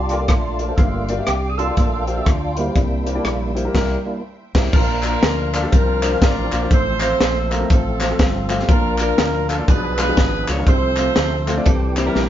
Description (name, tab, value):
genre	uptempo gospel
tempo	121 BPM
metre	4/4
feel	swing 63% on 8ths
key	F major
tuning	A4 = 440 Hz
part	percussive tonewheel organ	sustained chords	0.0-12.3 s	Eb3 to Bb4	-26 LUFS	right 2 dB	slow rotary speaker, overdrive, chorus vibrato
part	rich studio string section	sustained chords	0.0-4.7 s	C5 to A5	-36 LUFS	right 4 dB	none
part	fingered electric bass	bass	0.0-12.3 s	G1 to D2	-23 LUFS	equal	none
part	warm concert grand piano	accompaniment	0.1-12.3 s	G2 to F5	-25 LUFS	left 3 dB	none
part	crisp fusion drum kit	drums	0.1-12.3 s	crash cymbal, hi-hat, kick drum, rim click, snare drum	-18 LUFS	equal	none
part	warm horn section	melody	4.7-11.7 s	C4 to D5	-22 LUFS	right 1 dB	none
part	group handclap	percussion	5.0-12.1 s	none	-28 LUFS	left 2 dB	none
part	clean electric guitar	second line	11.7-12.3 s	G3 to A4	-28 LUFS	right 4 dB	spring reverb
room	light reverb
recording	band playing live in one room, nothing above 7.5 kHz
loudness	-16 LUFS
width	side -11 dB against mid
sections	0.0-4.7 A section; 4.7-12.3 B section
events	tonewheel organ solo 0.0-4.7; band accent 3.7-4.7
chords	0.0 Bbmaj7; 0.8 Gm7; 2.8 C7; 4.7 Bb; 5.7 C9sus4; 6.7 F/A; 8.7 Bb; 9.7 Bdim7; 10.7 F/C; 11.7 C